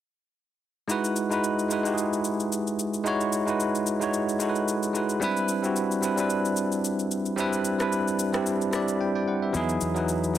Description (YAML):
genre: amapiano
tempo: 111 BPM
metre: 4/4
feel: swing 55% on 16ths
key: unclear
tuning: A4 = 440 Hz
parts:
  - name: bell-like tine electric piano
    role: accompaniment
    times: 0.9-10.4 s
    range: F#3 to B5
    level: -24 LUFS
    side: equal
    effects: medium stereo tremolo
  - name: electronic shaker and rim click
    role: drums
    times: 0.9-10.4 s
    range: none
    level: -35 LUFS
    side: left 3 dB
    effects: none
  - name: fingered electric bass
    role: bass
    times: 9.5-10.4 s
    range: E2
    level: -29 LUFS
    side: left 1 dB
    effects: none
room: light reverb, digital ambience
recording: none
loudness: -24 LUFS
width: side -11 dB against mid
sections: 0.9-10.4 A section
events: tine electric piano fill 8.5-9.5; drums muted 9.0-9.5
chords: 0.9 Emaj9; 5.2 Cmaj9; 9.5 Emaj9